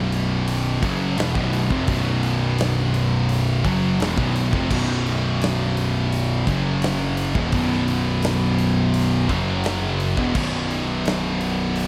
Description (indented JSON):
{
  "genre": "stoner and doom metal",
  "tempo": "85 BPM",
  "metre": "4/4",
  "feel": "straight",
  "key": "unclear",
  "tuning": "A4 = 440 Hz",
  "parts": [
    { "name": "heavy high-gain guitar", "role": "riff", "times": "0.0-11.9 s", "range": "B1 to F#3", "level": "-30 LUFS", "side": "equal", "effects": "distortion" },
    { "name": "thick fuzz guitar", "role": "riff", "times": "0.0-11.9 s", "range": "B1 to F#3", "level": "-27 LUFS", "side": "equal", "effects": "distortion" },
    { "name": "thick fuzz guitar", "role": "riff", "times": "0.0-11.9 s", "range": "B1 to F#3", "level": "-27 LUFS", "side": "equal", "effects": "distortion" },
    { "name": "fuzz picked electric bass", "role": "bass", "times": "0.0-11.9 s", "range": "B0 to F#1", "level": "-29 LUFS", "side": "equal", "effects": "overdrive" },
    { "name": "big rock drum kit", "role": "drums", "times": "0.1-11.9 s", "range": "crash cymbal, hi-hat, kick drum, snare drum", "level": "-30 LUFS", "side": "equal", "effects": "none" }
  ],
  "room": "small room ambience",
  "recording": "none",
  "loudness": "-21 LUFS",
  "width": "mono",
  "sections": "0.0-11.9 A section",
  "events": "none",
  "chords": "0.0 B5; 6.5 F#5; 7.4 B5; 9.3 F#5; 10.2 B5"
}